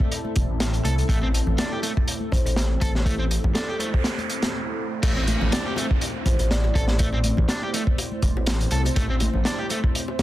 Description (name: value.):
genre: breakbeat, breaks.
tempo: 122 BPM.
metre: 4/4.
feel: swing 55% on 16ths.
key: A minor.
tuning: A4 = 441 Hz.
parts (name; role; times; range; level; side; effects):
dark analog pad; sustained chords; 0.0-10.2 s; A3 to C5; -32 LUFS; right 1 dB; chorus, sidechain pumping.
crunchy breakbeat drum kit; drums; 0.0-10.2 s; crash cymbal, hi-hat, kick drum, snare drum; -24 LUFS; equal; none.
congas and bongos; percussion; 0.2-10.2 s; none; -33 LUFS; left 3 dB; none.
phased detuned saw bass; bass; 0.4-10.2 s; E1 to C2; -23 LUFS; equal; phaser.
crunchy overdriven guitar; riff; 0.8-9.8 s; A3 to A4; -31 LUFS; equal; tube saturation, vintage 12-bit sampler grit, dub echo.
buzzing kalimba; melody; 2.3-7.2, 10.2 s; A4 to D5; -35 LUFS; left 1 dB; AM radio sound, dub echo.
noise sweep and downlifter; sound effects; 3.5-9.0 s; none; -34 LUFS; right 2 dB; none.
room: light reverb, studio ambience.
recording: dense, heavily limited modern master.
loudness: -21 LUFS.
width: side -15 dB against mid.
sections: 0.0-5.0 A section; 5.0-10.2 B section.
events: noise sweep 3.5-5.0; break 4.5-5.0; drop 5.0-10.2.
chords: 0.0 Am.